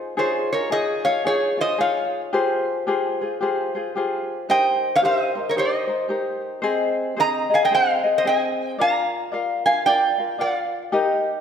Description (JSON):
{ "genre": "Hawaiian", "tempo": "111 BPM", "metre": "4/4", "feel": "swing 62% on 8ths", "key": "unclear", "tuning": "A4 = 441 Hz", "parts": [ { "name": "tenor ukulele", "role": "accompaniment", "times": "0.0-11.4 s", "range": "C4 to F5", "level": "-23 LUFS", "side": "left 3 dB", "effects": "none" }, { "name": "metal-body resonator slide guitar", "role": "melody", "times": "0.2-10.8 s", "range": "Ab4 to Bb5", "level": "-20 LUFS", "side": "right 2 dB", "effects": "none" } ], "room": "wet scoring stage reverb, RT60 1.7 s", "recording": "none", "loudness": "-19 LUFS", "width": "side -8 dB against mid", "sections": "0.0-11.4 A section", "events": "none", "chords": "0.2 Dbadd9; 2.3 Fmadd9; 4.5 Eb6; 6.6 Ab; 8.8 Bb" }